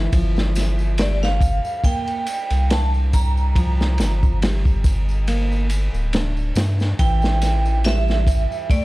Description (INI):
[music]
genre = trip hop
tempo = 70 BPM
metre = 4/4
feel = swing 55% on 16ths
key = G dorian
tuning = A4 = 441 Hz
[part]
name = nylon-string guitar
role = arpeggios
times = 0.0-8.8 s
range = E3 to D4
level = -30 LUFS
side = left 1 dB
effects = ping-pong delay
[part]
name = round analog bass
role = bass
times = 0.0-8.5 s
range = D1 to G2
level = -19 LUFS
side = equal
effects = none
[part]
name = crunchy breakbeat drum kit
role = drums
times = 0.1-8.8 s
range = kick drum, ride cymbal, snare drum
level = -22 LUFS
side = equal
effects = none
[part]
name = tambourine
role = percussion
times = 0.1-8.8 s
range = none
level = -41 LUFS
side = left 1 dB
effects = none
[part]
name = vibraphone with hard mallets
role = melody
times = 1.0-8.8 s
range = D5 to Bb5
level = -26 LUFS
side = right 3 dB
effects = vintage 12-bit sampler grit, tape echo
[sound]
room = little or no reverb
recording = dark, warm production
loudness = -17 LUFS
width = side -19 dB against mid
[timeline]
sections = 0.0-8.8 A section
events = none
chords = 0.1 G7(no3); 7.0 A7(no3)